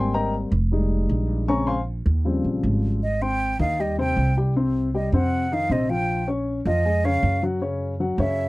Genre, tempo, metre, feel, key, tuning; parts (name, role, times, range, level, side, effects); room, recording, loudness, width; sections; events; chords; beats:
Afro-Cuban jazz; 156 BPM; 4/4; straight; Ab major; A4 = 440 Hz
dark upright piano; accompaniment; 0.0-8.5 s; C3 to Db6; -24 LUFS; left 2 dB
upright bass; bass; 0.0-8.5 s; F1 to Gb2; -24 LUFS; right 1 dB
breathy mellow concert flute; melody; 3.0-8.5 s; Eb5 to G5; -25 LUFS; right 2 dB
little or no reverb; dry, close 1970s-style studio recording; -20 LUFS; side -20 dB against mid
0.0-3.0 A section; 3.0-8.5 A section
upright piano solo 0.0-3.0; flute solo 3.0-8.5
0.0 Abmaj9; 0.7 Fm9; 1.5 Bbm9; 2.3 Eb13; 3.0 Abmaj7; 4.6 C5; 5.3 F5; 6.1 Bbm7; 7.6 Gb5
0.34 0.72 1.10 | 1.49 1.87 2.26 2.64 | 3.02 3.41 3.79 4.17 | 4.56 4.94 5.33 5.71 | 6.09 6.47 6.86 7.24 | 7.62 8.00 8.38